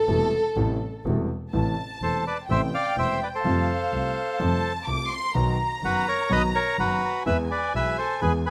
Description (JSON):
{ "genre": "tango", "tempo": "126 BPM", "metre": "4/4", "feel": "rubato", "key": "A minor", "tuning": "A4 = 440 Hz", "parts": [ { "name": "warm studio violin section", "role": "second line", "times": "0.0-8.5 s", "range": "A4 to D6", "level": "-31 LUFS", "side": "equal", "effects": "none" }, { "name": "dark grand piano", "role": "accompaniment", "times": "0.1-8.4 s", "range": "E1 to G#4", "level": "-31 LUFS", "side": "equal", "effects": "none" }, { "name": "rich double bass", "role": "bass", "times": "0.1-8.4 s", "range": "E1 to F2", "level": "-32 LUFS", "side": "equal", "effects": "none" }, { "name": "bandoneon", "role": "melody", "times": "2.0-8.5 s", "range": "F#4 to F5", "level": "-28 LUFS", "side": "equal", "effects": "none" } ], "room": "small room ambience", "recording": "rough home demo mix", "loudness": "-25 LUFS", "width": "mono", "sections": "0.0-1.5 A section; 1.5-8.5 B section", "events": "violin section solo 0.0-1.5", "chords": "0.0 Am7; 1.5 Am; 3.4 Fadd9; 5.3 B; 7.3 E" }